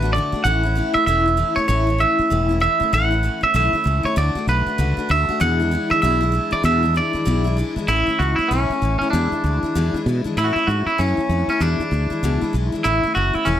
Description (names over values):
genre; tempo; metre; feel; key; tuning
rockabilly; 193 BPM; 4/4; swing 61% on 8ths; A major; A4 = 438 Hz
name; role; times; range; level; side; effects
twangy electric guitar; melody; 0.0-13.6 s; C#4 to F#5; -20 LUFS; right 2 dB; plate reverb, analog delay
picked steel-string acoustic guitar; accompaniment; 0.0-13.6 s; E2 to F#4; -23 LUFS; left 3 dB; plate reverb
mellow fretless electric bass; bass; 0.0-13.6 s; E1 to B2; -21 LUFS; equal; none
room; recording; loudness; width
light reverb; none; -17 LUFS; side -10 dB against mid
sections
0.0-7.9 A section; 7.9-13.6 B section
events
none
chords
0.4 A; 4.2 D; 5.4 E7; 7.9 A; 9.1 E7; 10.4 A; 11.6 E7; 12.9 A